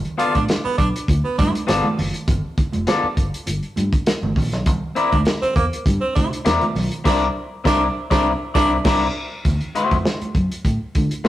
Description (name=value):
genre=funk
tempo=100 BPM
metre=4/4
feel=straight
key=unclear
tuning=A4 = 441 Hz
part: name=warm soul drum kit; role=drums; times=0.0-11.3 s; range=crash cymbal, hi-hat, kick drum, snare drum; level=-21 LUFS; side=equal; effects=none
part: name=bright baritone saxophone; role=second line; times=0.2-9.0 s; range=Bb3 to F4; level=-23 LUFS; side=right 3 dB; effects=none
part: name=electric guitar at the edge of break-up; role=accompaniment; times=0.2-11.3 s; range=A3 to D5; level=-21 LUFS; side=left 3 dB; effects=none
part: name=congas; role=percussion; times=0.3-11.3 s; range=none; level=-28 LUFS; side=right 3 dB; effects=none
part: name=vintage muted fingered electric bass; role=bass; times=0.4-11.3 s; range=F1 to D3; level=-24 LUFS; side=equal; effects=none
room=moderate stone room reverb, RT60 1.2 s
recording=rough rehearsal-room recording, warm saturation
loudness=-17 LUFS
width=side -14 dB against mid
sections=0.0-9.5 A section; 9.5-11.3 B section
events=band accent 7.1-9.5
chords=0.0 G9; 4.7 C9; 9.5 D9